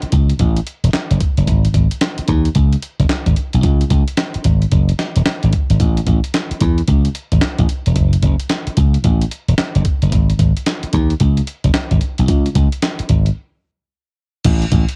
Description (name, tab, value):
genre	R&B, new jack swing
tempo	111 BPM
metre	4/4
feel	swing 63% on 16ths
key	C# minor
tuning	A4 = 442 Hz
part	slap bass	bass	0.0-14.8 s	E1 to E2	-16 LUFS	equal	none
part	dusty soul sampler-style drum kit	drums	0.0-15.0 s	crash cymbal, handclaps, hi-hat, kick drum, snare drum	-20 LUFS	equal	cassette tape
room	little or no reverb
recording	home recording on cassette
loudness	-16 LUFS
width	mono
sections	0.0-14.4 A section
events	break 13.4-14.4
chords	none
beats	0.39 0.93 | 1.48 2.02 2.56 3.10 | 3.64 4.18 4.72 5.26 | 5.80 6.34 6.88 7.42 | 7.96 8.50 9.04 9.58 | 10.12 10.66 11.21 11.74 | 12.29 12.83 13.37 13.91 | 14.45